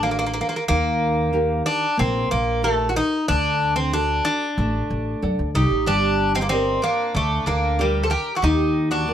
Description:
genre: greek folk, Greek bouzouki band.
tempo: 93 BPM.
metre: 4/4.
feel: straight.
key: G harmonic minor.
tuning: A4 = 440 Hz.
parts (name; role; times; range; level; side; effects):
Greek bouzouki; melody; 0.0-9.1 s; G3 to A4; -21 LUFS; equal; none.
nylon-string guitar; accompaniment; 0.0-9.1 s; D3 to F#5; -26 LUFS; right 1 dB; none.
upright bass; bass; 0.0-9.1 s; G1 to F#2; -24 LUFS; equal; none.
mandolin; second line; 5.6-9.1 s; Bb3 to C5; -27 LUFS; right 5 dB; none.
room: moderate studio reverb, RT60 0.6 s.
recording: none.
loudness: -19 LUFS.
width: side -10 dB against mid.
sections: 0.0-9.1 A section.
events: none.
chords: 0.0 D; 0.7 Eb; 3.3 D; 5.9 Gm; 8.4 Eb.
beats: 0.04 | 0.69 1.34 1.99 2.63 | 3.28 3.93 4.57 5.22 | 5.86 6.51 7.15 7.79 | 8.43 9.07.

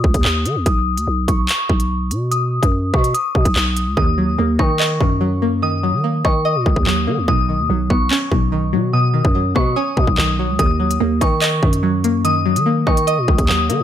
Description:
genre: hip hop, drill.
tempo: 145 BPM.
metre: 4/4.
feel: half-time.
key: Eb minor.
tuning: A4 = 440 Hz.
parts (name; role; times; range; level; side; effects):
soft synth bell; melody; 0.0-13.8 s; C#6 to Eb6; -22 LUFS; left 2 dB; chorus, low-pass filter, diffuse ambient delay.
growling 808-style bass; bass; 0.0-13.8 s; B1 to Eb3; -19 LUFS; equal; none.
drill drum kit; drums; 0.0-13.8 s; handclaps, hi-hat, kick drum, rim click; -18 LUFS; equal; none.
string-like resonator pluck; accompaniment; 4.0-13.8 s; B2 to Eb5; -20 LUFS; equal; chorus, phaser, low-pass filter.
room: moderate plate reverb, RT60 1.0 s.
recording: dreamy mix soaked in reverb.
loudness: -15 LUFS.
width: side -10 dB against mid.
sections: 0.0-13.8 A section.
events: filter sweep 0.0-4.0; hi-hats muted 4.0-10.6.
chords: 0.0 N.C.; 0.7 Badd9; 4.0 Ebm; 7.3 Badd9; 10.6 Ebm.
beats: 0.25 | 0.66 1.07 1.49 1.90 | 2.32 2.73 3.14 3.56 | 3.97 4.38 4.80 5.21 | 5.63 6.04 6.45 6.87 | 7.28 7.70 8.11 8.52 | 8.94 9.35 9.76 10.18 | 10.59 11.01 11.42 11.83 | 12.25 12.66 13.07 13.49.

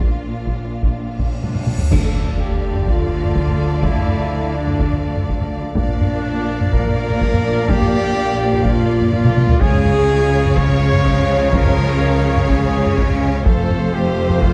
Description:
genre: cinematic, epic orchestral film score.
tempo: 125 BPM.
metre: 4/4.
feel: straight.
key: D minor.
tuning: A4 = 439 Hz.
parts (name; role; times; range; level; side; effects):
warm symphonic violin section; melody; 0.0-14.5 s; F5; -35 LUFS; equal; none.
warm symphonic violin section; second line; 0.0-14.5 s; F4 to D5; -30 LUFS; equal; none.
warm symphonic viola section; accompaniment; 0.0-14.5 s; G#3 to D4; -29 LUFS; equal; none.
warm French horn section; sustained chords; 0.0-14.5 s; F3 to C#5; -26 LUFS; equal; none.
warm woodwind section; sustained chords; 0.0-14.5 s; D4 to A5; -33 LUFS; equal; none.
rich symphonic double bass section; bass; 0.0-14.5 s; F1 to D2; -25 LUFS; equal; none.
warm symphonic cello section; bass; 0.0-14.5 s; F2 to D3; -25 LUFS; equal; none.
cymbal swell and impact; sound effects; 1.7-3.8 s; none; -31 LUFS; equal; none.
taiko ensemble; drums; 0.5-14.5 s; none; -21 LUFS; equal; none.
clear trumpet; stabs; 1.4-14.5 s; C#4 to C#5; -29 LUFS; equal; none.
dark trombone section; sustained chords; 1.9-14.5 s; F3 to D4; -33 LUFS; equal; none.
clash cymbals, concert bass drum and cymbal swell; percussion; 1.9-2.8, 13.5-14.5 s; none; -28 LUFS; equal; none.
timpani; percussion; 1.9-2.6 s; D3; -29 LUFS; equal; none.
room: moderate scoring stage reverb, RT60 1.5 s.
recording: dark, warm production.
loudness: -17 LUFS.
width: mono.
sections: 0.0-1.9 A section; 1.9-14.5 B section.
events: drum fill 1.4-1.9, 9.1-9.6; cymbal swell 1.7; band accent 1.9-2.4; impact 1.9-3.8.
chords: 0.0 Bb; 1.9 Dm; 5.8 Bb; 9.6 C#; 13.5 F.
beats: | 0.00 0.48 0.96 1.44 | 1.92 2.40 2.88 3.37 | 3.85 4.33 4.81 5.29 | 5.77 6.25 6.73 7.21 | 7.69 8.17 8.65 9.13 | 9.61 10.09 10.57 11.06 | 11.54 12.02 12.50 12.98 | 13.46 13.94 14.42.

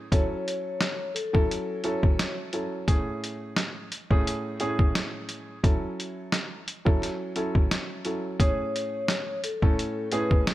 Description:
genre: hip hop, boom-bap hip-hop.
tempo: 87 BPM.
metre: 4/4.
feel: swing 55% on 16ths.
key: F# minor.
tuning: A4 = 440 Hz.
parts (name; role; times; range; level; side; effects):
dark grand piano; accompaniment; 0.0-10.5 s; A2 to A4; -30 LUFS; right 1 dB; cassette tape, high-pass filter, low-pass filter.
vibraphone with soft mallets; melody; 0.1-2.3, 8.4-10.4 s; A4 to C#5; -31 LUFS; left 2 dB; high-pass filter, low-pass filter.
trip hop sampler-style drum kit; drums; 0.1-10.5 s; hi-hat, kick drum, snare drum; -24 LUFS; equal; none.
room: little or no reverb.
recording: none.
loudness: -25 LUFS.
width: side -15 dB against mid.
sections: 0.0-10.5 A section.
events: none.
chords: 0.1 F#m7; 2.9 Amaj7; 5.6 F#m7; 8.4 Amaj7.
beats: | 0.12 0.81 1.50 2.19 | 2.88 3.57 4.26 4.95 | 5.64 6.33 7.02 7.71 | 8.40 9.09 9.78 10.46.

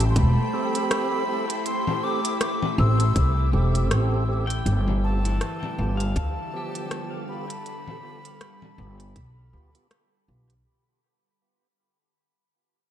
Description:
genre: ambient dub.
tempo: 80 BPM.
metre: 4/4.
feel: swing 58% on 16ths.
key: unclear.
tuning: A4 = 440 Hz.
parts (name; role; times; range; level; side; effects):
wooden flute; melody; 0.0-9.9 s; A5 to E6; -31 LUFS; left 1 dB; dub echo.
soft additive organ-like pad; sustained chords; 0.0-10.7 s; D3 to G5; -32 LUFS; left 1 dB; ensemble chorus, built-in reverb.
tonewheel organ; stabs; 0.0-10.5 s; F3 to A4; -32 LUFS; right 4 dB; slow rotary speaker, dub echo.
upright bass; bass; 0.0-10.6 s; E1 to D2; -21 LUFS; equal; none.
organic electronic drum kit; drums; 0.0-10.6 s; congas, hi-hat, rim click; -30 LUFS; left 2 dB; studio reverb, dub echo.
electronic kick drum; drums; 0.2-9.3 s; none; -23 LUFS; equal; studio reverb.
pedal steel guitar; arpeggios; 4.5-8.7 s; E3 to G5; -39 LUFS; left 3 dB; dub echo.
room: light reverb.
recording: none.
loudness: -22 LUFS.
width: side -11 dB against mid.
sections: 0.0-10.7 A section.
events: fade-out 2.7-10.7.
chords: 0.0 Am7; 4.7 G7.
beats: 0.16 0.91 | 1.66 2.41 3.16 3.91 | 4.66 5.41 6.16 6.91 | 7.66 8.41 9.16 9.91.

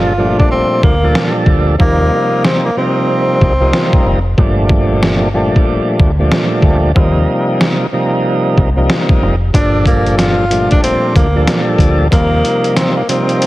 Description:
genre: hip hop, boom-bap hip-hop.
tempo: 93 BPM.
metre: 4/4.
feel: swing 61% on 16ths.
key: G minor.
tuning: A4 = 442 Hz.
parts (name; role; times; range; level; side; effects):
breathy tenor saxophone; melody; 0.0-4.3, 9.6-13.5 s; Bb3 to F4; -16 LUFS; equal; slapback echo.
tonewheel organ; accompaniment; 0.0-13.5 s; Bb2 to A4; -14 LUFS; equal; overdrive, slow rotary speaker, cassette tape.
deep dub fingered electric bass; bass; 0.0-12.4 s; F1 to Eb2; -14 LUFS; equal; none.
trip hop sampler-style drum kit; drums; 0.4-13.5 s; hi-hat, kick drum, snare drum; -14 LUFS; equal; none.
room: light reverb.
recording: heavily compressed radio sound, multiband compression.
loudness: -10 LUFS.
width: side -17 dB against mid.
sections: 0.0-13.5 A section.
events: break 0.0-9.5.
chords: 0.0 Gm7; 1.8 Eb6; 4.4 Gm7; 7.0 Eb6; 9.5 Gm7; 12.1 Eb6.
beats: 0.51 1.15 | 1.80 2.44 3.09 3.73 | 4.38 5.03 5.67 6.32 | 6.96 7.61 8.25 8.90 | 9.54 10.19 10.83 11.48 | 12.12 12.77 13.41.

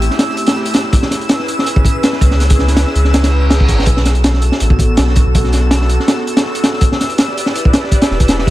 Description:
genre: drum and bass, jungle.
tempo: 163 BPM.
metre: 4/4.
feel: swing 53% on 16ths.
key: unclear.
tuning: A4 = 438 Hz.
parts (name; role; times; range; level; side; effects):
airy breathy pad; sustained chords; 0.0-8.5 s; A3 to D5; -20 LUFS; equal; chorus.
soft dub sub bass; bass; 0.0-8.5 s; E1 to C#2; -13 LUFS; equal; none.
crunchy breakbeat drum kit; drums; 0.0-8.5 s; hi-hat, kick drum, snare drum; -13 LUFS; equal; none.
twinkling granular texture; texture; 0.0-8.5 s; E6; -24 LUFS; equal; built-in reverb.
reverse cymbal; sound effects; 3.3-3.9 s; none; -25 LUFS; right 1 dB; none.
room: light reverb, small room ambience.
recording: vinyl crackle.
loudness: -11 LUFS.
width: side -16 dB against mid.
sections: 0.0-8.5 A section.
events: reverse cymbal 3.3-3.9.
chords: 0.0 Am7; 0.9 C#m7; 3.9 Bm7; 6.8 Em7.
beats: 0.19 0.56 | 0.93 1.29 1.66 2.03 | 2.40 2.77 3.14 3.50 | 3.87 4.24 4.61 4.98 | 5.34 5.71 6.08 6.45 | 6.82 7.18 7.55 7.92 | 8.29.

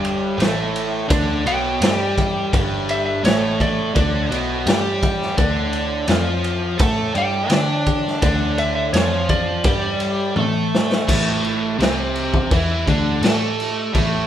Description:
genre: blues rock power trio and southern rock.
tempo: 84 BPM.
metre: 4/4.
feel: straight.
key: unclear.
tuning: A4 = 440 Hz.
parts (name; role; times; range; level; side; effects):
lightly driven lead guitar; melody; 0.0-10.0 s; C#5 to G5; -24 LUFS; equal; none.
crunchy overdriven guitar; riff; 0.0-14.3 s; G2 to D5; -21 LUFS; equal; none.
vintage muted picked electric bass; bass; 0.0-14.3 s; G1 to D3; -25 LUFS; equal; none.
raw garage drum kit; drums; 0.0-14.1 s; crash cymbal, kick drum, ride cymbal, snare drum, toms; -20 LUFS; equal; none.
room: moderate large studio reverb, RT60 1.0 s.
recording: band playing live in one room.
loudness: -17 LUFS.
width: side -10 dB against mid.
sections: 0.0-11.1 A section; 11.1-14.3 B section.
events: lead electric guitar solo 0.0-11.1; drum fill 10.4-11.1.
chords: 0.0 G5; 5.4 D5; 11.1 A5.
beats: 0.39 1.11 1.82 | 2.53 3.24 3.96 4.67 | 5.38 6.09 6.80 7.51 | 8.23 8.94 9.65 10.36 | 11.08 11.79 12.50 13.22 | 13.93.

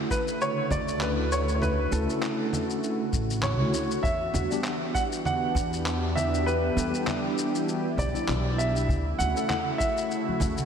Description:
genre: sunset chillout.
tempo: 99 BPM.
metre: 4/4.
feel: swing 55% on 16ths.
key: D major.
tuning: A4 = 440 Hz.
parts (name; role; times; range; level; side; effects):
warm baby grand piano; melody; 0.0-10.7 s; A4 to F#5; -30 LUFS; right 1 dB; diffuse ambient delay.
lush unison pad; sustained chords; 0.0-10.7 s; C#3 to G4; -30 LUFS; equal; chorus.
electronic kick drum; drums; 0.1-10.5 s; none; -32 LUFS; equal; overdrive.
electronic shaker, congas and handclaps; drums; 0.1-10.7 s; none; -34 LUFS; right 1 dB; none.
upright bass; bass; 0.7-10.7 s; A1 to E2; -29 LUFS; equal; tube saturation.
tine electric piano; accompaniment; 1.9-9.5 s; G3 to B4; -33 LUFS; moving between left 4 dB and right 3 dB; overdrive, fast stereo tremolo, auto-pan, diffuse ambient delay.
congas; percussion; 8.9-10.7 s; none; -37 LUFS; left 2 dB; none.
room: wet lush hall reverb, RT60 2.5 s.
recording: dreamy mix soaked in reverb.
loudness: -24 LUFS.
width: side -7 dB against mid.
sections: 0.0-10.7 A section.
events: none.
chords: 0.0 Dmaj7; 4.0 Em7; 8.9 Dmaj7.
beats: 0.41 1.01 | 1.62 2.23 2.83 3.44 | 4.04 4.65 5.26 5.86 | 6.47 7.08 7.68 8.29 | 8.89 9.50 10.11.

